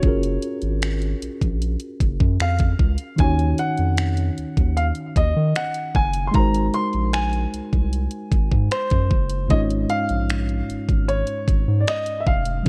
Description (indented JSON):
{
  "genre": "contemporary R&B",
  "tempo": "76 BPM",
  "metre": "4/4",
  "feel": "straight",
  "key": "unclear",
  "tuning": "A4 = 439 Hz",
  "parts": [
    { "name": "warm baby grand piano", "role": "melody", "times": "0.0-12.7 s", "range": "C5 to C6", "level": "-29 LUFS", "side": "equal", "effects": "none" },
    { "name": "mellow tine electric piano", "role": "accompaniment", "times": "0.0-12.7 s", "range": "Ab2 to Db5", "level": "-29 LUFS", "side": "equal", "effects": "none" },
    { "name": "round analog bass", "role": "bass", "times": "0.0-12.7 s", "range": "F1 to Eb3", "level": "-24 LUFS", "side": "equal", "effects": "none" },
    { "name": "trap drum kit", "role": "drums", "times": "0.0-12.7 s", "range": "finger snaps, hi-hat, kick drum", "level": "-23 LUFS", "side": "equal", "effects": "none" }
  ],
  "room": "digital ambience",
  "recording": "worn, warbling old tape, cassette tape, warbly pitch drift",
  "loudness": "-21 LUFS",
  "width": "mono",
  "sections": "0.0-12.7 A section",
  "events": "none",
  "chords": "0.0 Gbmaj7; 3.2 Ebm9; 6.3 Ab7; 9.5 Dbadd9/Ab"
}